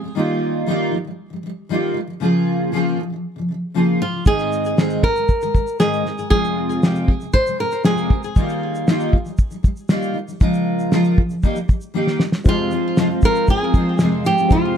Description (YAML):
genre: acoustic pop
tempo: 117 BPM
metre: 4/4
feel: straight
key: unclear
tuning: A4 = 439 Hz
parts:
  - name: fingerpicked steel-string acoustic guitar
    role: accompaniment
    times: 0.0-14.8 s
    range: F2 to Bb4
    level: -20 LUFS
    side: equal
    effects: double-tracked left and right
  - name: flamenco guitar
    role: melody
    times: 4.0-8.2, 12.5-14.8 s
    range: F4 to C5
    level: -21 LUFS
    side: right 1 dB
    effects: plate reverb, ping-pong delay
  - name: cloth-damped thuddy drum kit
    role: drums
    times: 4.3-14.6 s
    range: kick drum, shaker, snare drum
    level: -16 LUFS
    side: equal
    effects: none
  - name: dark upright piano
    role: accompaniment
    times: 12.4-14.8 s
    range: C4 to G5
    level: -29 LUFS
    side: left 4 dB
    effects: plate reverb
room: light reverb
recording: none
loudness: -16 LUFS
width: side -8 dB against mid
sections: 0.0-12.5 A section; 12.5-14.8 B section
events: drum fill 11.9-12.5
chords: 0.2 Ebadd9; 2.2 Db6; 4.3 Ab; 6.3 Fmadd9; 8.4 Ebadd9; 10.4 Db6; 11.4 Eb; 12.5 Fm